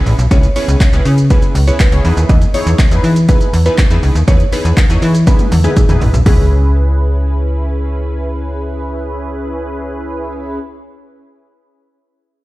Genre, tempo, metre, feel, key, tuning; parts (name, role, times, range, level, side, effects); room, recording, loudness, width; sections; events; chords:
dance-pop; 121 BPM; 4/4; straight; C# minor; A4 = 440 Hz
funky polysynth comp; accompaniment; 0.0-10.6 s; B3 to C#5; -21 LUFS; equal; chorus, sidechain pumping
slap-like FM bass; bass; 0.1-10.6 s; A1 to E3; -13 LUFS; equal; sidechain pumping
punchy analog drum machine; drums; 0.1-6.4 s; handclaps, hi-hat, kick drum, shaker, toms; -12 LUFS; equal
mallet-like synth pluck; melody; 0.3-7.7 s; G#4 to D#5; -23 LUFS; equal; chorus, dub echo
little or no reverb; played on a big sound system in a bare room, stone room reverb; -10 LUFS; side -18 dB against mid
0.0-6.3 A section; 6.3-10.2 B section
drop 0.0-6.3; drum fill 5.3-6.3
0.0 C#m7; 2.0 Emaj7; 6.3 C#m7